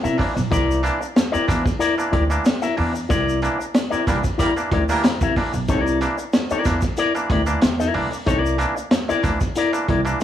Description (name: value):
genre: funk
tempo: 93 BPM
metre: 4/4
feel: straight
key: unclear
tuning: A4 = 442 Hz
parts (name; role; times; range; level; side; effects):
- electric guitar with an envelope filter; accompaniment; 0.0-10.2 s; E4 to E5; -23 LUFS; left 4 dB; none
- upright bass; bass; 0.0-10.1 s; B1 to C3; -24 LUFS; right 1 dB; none
- tube shaker; percussion; 0.1-10.2 s; none; -40 LUFS; left 6 dB; none
- bright clav; stabs; 0.2-10.2 s; C3 to D4; -26 LUFS; right 2 dB; none
- crunchy breakbeat drum kit; drums; 0.2-10.2 s; hi-hat, kick drum, snare drum; -21 LUFS; equal; none
- warm horn section; second line; 4.1-5.1 s; G3 to Bb4; -26 LUFS; right 2 dB; none
room: light reverb, small room ambience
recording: none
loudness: -18 LUFS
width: side -11 dB against mid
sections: 0.0-10.2 A section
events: band accent 3.1-5.7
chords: 0.0 C9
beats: | 0.51 1.16 1.80 2.45 | 3.10 3.74 4.39 5.04 | 5.68 6.33 6.97 7.62 | 8.27 8.91 9.56 10.21